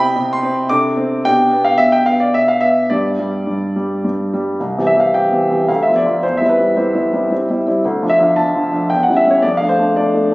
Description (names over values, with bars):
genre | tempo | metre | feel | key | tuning
classical-period piano sonatina | 111 BPM | 3/4 | rubato | C major | A4 = 440 Hz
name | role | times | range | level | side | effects
warm concert grand piano | solo | 0.0-10.3 s | C2 to D6 | -13 LUFS | equal | none
room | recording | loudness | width
moderate recital hall reverb, RT60 1.7 s | recorded on a phone in the room, studio reverb, compression | -13 LUFS | side -21 dB against mid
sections
0.0-4.6 A section; 4.6-10.3 B section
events
none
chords
0.0 C; 0.7 D5/C; 1.2 G/B; 2.9 G; 4.6 C; 5.7 Bdim/D; 6.2 C/E; 7.8 Dm; 8.9 C#dim/E; 9.4 Dm/F